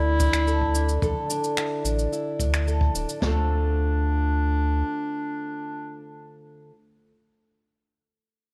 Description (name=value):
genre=folktronica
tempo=109 BPM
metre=4/4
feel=straight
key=D minor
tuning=A4 = 440 Hz
part: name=bright clarinet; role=melody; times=0.0-6.2 s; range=D4 to E4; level=-31 LUFS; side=equal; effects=digital delay
part: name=fingerpicked plugged-in old ladder-braced acoustic guitar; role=arpeggios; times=0.0-6.8 s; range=D3 to A4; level=-32 LUFS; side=equal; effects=digital delay
part: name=warm sub bass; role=bass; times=0.0-4.8 s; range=D1 to D2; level=-26 LUFS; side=equal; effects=none
part: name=electronic shaker and finger snaps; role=drums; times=0.2-3.2 s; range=none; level=-32 LUFS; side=equal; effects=none
part: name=jazz brush drum kit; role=drums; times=0.2-3.3 s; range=kick drum, snare drum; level=-29 LUFS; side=equal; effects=none
room=light reverb, small room ambience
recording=none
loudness=-25 LUFS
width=mono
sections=0.0-3.2 A section; 3.2-5.4 B section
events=none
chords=0.0 Asus4; 3.2 Dm7